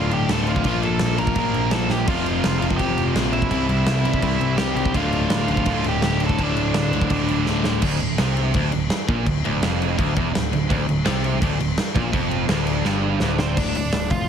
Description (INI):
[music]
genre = punk rock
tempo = 167 BPM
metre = 4/4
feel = straight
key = D minor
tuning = A4 = 440 Hz
[part]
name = dark smooth lead guitar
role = melody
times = 0.0-7.4, 13.4-14.3 s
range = C4 to Bb5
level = -26 LUFS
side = right 4 dB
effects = overdrive
[part]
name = crunchy overdriven guitar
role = riff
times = 0.0-14.3 s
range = D2 to C4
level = -24 LUFS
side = left 10 dB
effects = none
[part]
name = distorted electric guitar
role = riff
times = 0.0-13.6 s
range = D2 to C4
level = -25 LUFS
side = right 11 dB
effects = distortion
[part]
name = modern bright picked electric bass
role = bass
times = 0.0-14.3 s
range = D1 to C2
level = -26 LUFS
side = equal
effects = none
[part]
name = big rock drum kit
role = drums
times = 0.1-14.2 s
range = crash cymbal, hi-hat, kick drum, snare drum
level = -24 LUFS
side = equal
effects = none
[sound]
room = little or no reverb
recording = heavily compressed radio sound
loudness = -18 LUFS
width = side -8 dB against mid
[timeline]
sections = 0.0-7.8 A section; 7.8-13.6 B section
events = drum fill 1.9, 7.5-7.8, 12.9-13.6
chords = 0.0 Dm; 0.7 Bb5; 2.1 F5; 3.5 C; 5.0 Dm